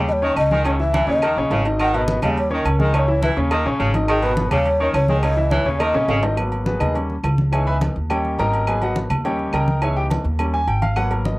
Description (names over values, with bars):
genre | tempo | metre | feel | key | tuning
latin, salsa | 209 BPM | 4/4 | straight | unclear | A4 = 440 Hz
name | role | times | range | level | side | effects
edgy saxophone section | second line | 0.0-6.2 s | C#3 to E3 | -23 LUFS | equal | cassette tape
clear baby grand piano | accompaniment | 0.0-11.4 s | B2 to C#6 | -23 LUFS | left 1 dB | cassette tape
upright bass | bass | 0.0-11.3 s | G#1 to D#2 | -22 LUFS | equal | none
breathy mellow long shakuhachi | melody | 0.1-6.2 s | G#4 to F#5 | -21 LUFS | equal | cassette tape
agogo bells and timbales | percussion | 0.1-11.3 s | none | -28 LUFS | right 2 dB | none
congas | percussion | 0.1-11.4 s | none | -28 LUFS | equal | none
claves | percussion | 0.4-11.1 s | none | -33 LUFS | left 2 dB | none
room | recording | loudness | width
moderate booth ambience, RT60 0.2 s | home recording on cassette | -17 LUFS | side -20 dB against mid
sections
0.0-6.4 A section; 6.4-11.4 B section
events
drum fill 5.9-6.4; grand piano solo 6.4-11.4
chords
0.1 D#7; 0.7 C#m; 1.2 D#5; 1.8 G#m; 2.4 D#7; 2.9 C#m; 3.5 D#5; 4.1 G#m; 4.7 D#7; 5.2 C#m; 5.8 D#5; 6.4 G#m7; 6.9 D#7; 7.5 C#m7; 8.1 D#7; 8.7 G#m7; 9.2 D#7; 9.8 C#m7; 10.4 D#7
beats
0.08 0.37 | 0.65 0.94 1.22 1.51 | 1.79 2.08 2.37 2.65 | 2.94 3.22 3.51 3.80 | 4.08 4.37 4.66 4.94 | 5.23 5.51 5.80 6.09 | 6.37 6.66 6.95 7.24 | 7.52 7.81 8.10 8.38 | 8.67 8.96 9.24 9.53 | 9.82 10.10 10.39 10.68 | 10.96 11.25